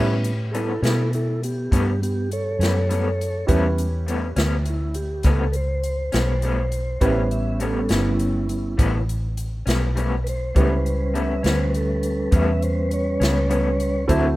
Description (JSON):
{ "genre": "slow blues", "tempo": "68 BPM (dotted quarters)", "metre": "12/8", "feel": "straight", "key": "A mixolydian", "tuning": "A4 = 440 Hz", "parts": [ { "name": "electric guitar through a small old amp", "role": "accompaniment", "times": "0.0-14.3 s", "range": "A2 to E4", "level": "-26 LUFS", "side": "left 2 dB", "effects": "tremolo" }, { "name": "warm upright piano", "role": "accompaniment", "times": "0.0-14.4 s", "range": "C#4 to C5", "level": "-28 LUFS", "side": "right 2 dB", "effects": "none" }, { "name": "mellow tonewheel organ", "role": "sustained chords", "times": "0.0-14.4 s", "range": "F#3 to E5", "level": "-25 LUFS", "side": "right 1 dB", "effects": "slow rotary speaker" }, { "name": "vintage muted fingered electric bass", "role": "bass", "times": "0.0-14.4 s", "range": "G1 to B2", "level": "-23 LUFS", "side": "equal", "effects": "none" }, { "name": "swinging big-band drum kit", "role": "drums", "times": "0.2-14.2 s", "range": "hi-hat, kick drum, snare drum", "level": "-25 LUFS", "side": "equal", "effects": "none" } ], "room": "small room ambience", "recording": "rough home demo mix", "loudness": "-19 LUFS", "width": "side -17 dB against mid", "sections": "0.0-14.4 A section", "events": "tonewheel organ solo 0.0-14.4", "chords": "0.0 A9" }